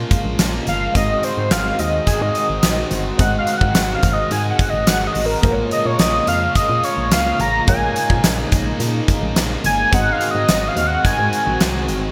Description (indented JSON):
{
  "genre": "1980s-style pop",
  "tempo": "107 BPM",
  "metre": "4/4",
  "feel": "straight",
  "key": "unclear",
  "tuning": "A4 = 440 Hz",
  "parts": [
    { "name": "dark grand piano", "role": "accompaniment", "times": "0.0-12.1 s", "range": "Ab2 to Eb5", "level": "-32 LUFS", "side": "equal", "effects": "none" },
    { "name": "tight distorted guitar", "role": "accompaniment", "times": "0.0-12.1 s", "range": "Ab2 to Bb3", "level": "-32 LUFS", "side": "equal", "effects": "distortion, subtle chorus, shimmer reverb" },
    { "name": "brassy analog pad", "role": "sustained chords", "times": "0.0-12.1 s", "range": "Db3 to Gb4", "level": "-28 LUFS", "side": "equal", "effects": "chorus, tremolo, shimmer reverb" },
    { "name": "solid FM bass", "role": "bass", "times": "0.0-12.1 s", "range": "G1 to Bb2", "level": "-26 LUFS", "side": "equal", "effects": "none" },
    { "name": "huge arena drum kit", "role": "drums", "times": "0.1-12.0 s", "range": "hi-hat, kick drum, snare drum", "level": "-22 LUFS", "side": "equal", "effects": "gated reverb" },
    { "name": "tambourine", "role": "percussion", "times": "0.1-12.0 s", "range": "none", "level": "-36 LUFS", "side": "equal", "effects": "none" },
    { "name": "octave-doubled lead", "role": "melody", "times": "0.7-11.6 s", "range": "Ab4 to Bb5", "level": "-22 LUFS", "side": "equal", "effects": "chorus, shimmer reverb, digital delay" }
  ],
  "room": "wet lush hall reverb, RT60 1.7 s, small room ambience",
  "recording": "bright 1980s-style digital production",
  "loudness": "-18 LUFS",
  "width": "mono",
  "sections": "0.0-12.1 A section",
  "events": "analog synth lead solo 0.0-12.1",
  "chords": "0.0 Bbm7; 1.0 Ab7; 5.4 Bbm7; 9.9 Ab7"
}